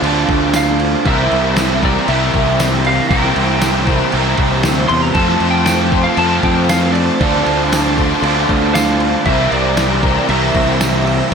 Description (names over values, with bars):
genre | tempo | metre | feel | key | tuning
rock, shoegaze and dream pop | 117 BPM | 4/4 | straight | unclear | A4 = 438 Hz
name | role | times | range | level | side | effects
string machine, full ensemble | sustained chords | 0.0-11.3 s | C5 to E6 | -23 LUFS | equal | phaser, ensemble chorus
crunchy overdriven guitar | riff | 0.0-11.3 s | C3 to Bb4 | -19 LUFS | left 10 dB | ensemble chorus
crunchy overdriven guitar | riff | 0.0-11.3 s | C3 to Bb4 | -18 LUFS | right 11 dB | reverse reverb
growling fingered electric bass | bass | 0.0-11.2 s | C2 to F2 | -19 LUFS | equal | overdrive
dusty soul sampler-style drum kit | drums | 0.0-11.3 s | crash cymbal, kick drum, snare drum | -20 LUFS | equal | none
tambourine | percussion | 0.5-10.9 s | none | -29 LUFS | right 4 dB | none
lightly driven lead guitar | melody | 0.6-11.3 s | D5 to C6 | -20 LUFS | equal | analog chorus, ping-pong delay
room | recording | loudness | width
moderate plate reverb, RT60 1.1 s, digital ambience | dreamy mix soaked in reverb | -12 LUFS | side -6 dB against mid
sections
0.0-11.3 A section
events
none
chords
0.0 Dm7; 1.1 C7; 5.2 Fmaj7; 7.2 Dm7; 9.3 C7